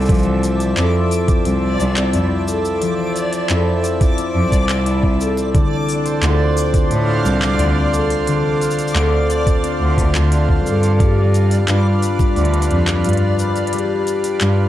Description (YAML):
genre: folktronica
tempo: 88 BPM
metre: 4/4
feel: straight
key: F lydian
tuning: A4 = 440 Hz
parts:
  - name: accordion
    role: sustained chords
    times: 0.0-14.7 s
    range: D3 to F5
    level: -25 LUFS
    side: right 3 dB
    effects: none
  - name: concert harp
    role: arpeggios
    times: 0.0-14.7 s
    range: D3 to B4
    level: -20 LUFS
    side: left 3 dB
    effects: tape echo
  - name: clear cello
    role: bass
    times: 0.0-14.5 s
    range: C2 to A2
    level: -18 LUFS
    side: right 1 dB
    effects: none
  - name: organic electronic drum kit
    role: drums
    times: 0.0-14.6 s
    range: cabasa, handclaps, hi-hat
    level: -26 LUFS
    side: equal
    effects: none
  - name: backwards swelling texture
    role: texture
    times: 0.0-14.7 s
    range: D5 to D6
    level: -26 LUFS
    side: left 2 dB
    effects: built-in reverb
  - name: electronic kick drum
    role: drums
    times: 0.1-12.3 s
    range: none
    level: -16 LUFS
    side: equal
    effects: none
room: little or no reverb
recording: dark, warm production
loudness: -14 LUFS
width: side -13 dB against mid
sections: 0.0-14.7 A section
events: none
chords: 0.0 Fmaj7; 5.5 Dm7; 11.0 G7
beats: | 0.09 0.78 1.46 2.14 | 2.82 3.50 4.18 4.87 | 5.55 6.23 6.91 7.59 | 8.28 8.96 9.64 10.32 | 11.00 11.68 12.37 13.05 | 13.73 14.41